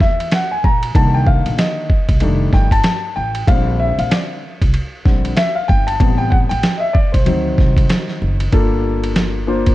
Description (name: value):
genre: hip hop, jazz-hop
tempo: 95 BPM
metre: 4/4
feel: swing 60% on 16ths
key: unclear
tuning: A4 = 442 Hz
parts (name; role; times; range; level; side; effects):
- dark concert grand piano; accompaniment; 0.0-9.7 s; C3 to A#5; -19 LUFS; left 2 dB; none
- upright bass; bass; 0.0-9.7 s; F1 to E2; -19 LUFS; equal; none
- lo-fi sampler-style drum kit; drums; 0.0-9.7 s; hi-hat, kick drum, ride cymbal, snare drum; -16 LUFS; equal; none
room: little or no reverb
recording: none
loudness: -13 LUFS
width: side -16 dB against mid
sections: 0.0-8.5 A section; 8.5-9.7 B section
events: grand piano solo 0.0-8.5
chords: 0.0 Eadd9(#11); 1.0 Cm7; 2.2 F13; 3.5 Bb69; 6.0 Am9; 7.3 D7b9; 8.5 Gm9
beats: 0.32 | 0.95 1.58 2.21 2.85 | 3.48 4.11 4.74 5.37 | 6.00 6.64 7.27 7.90 | 8.53 9.16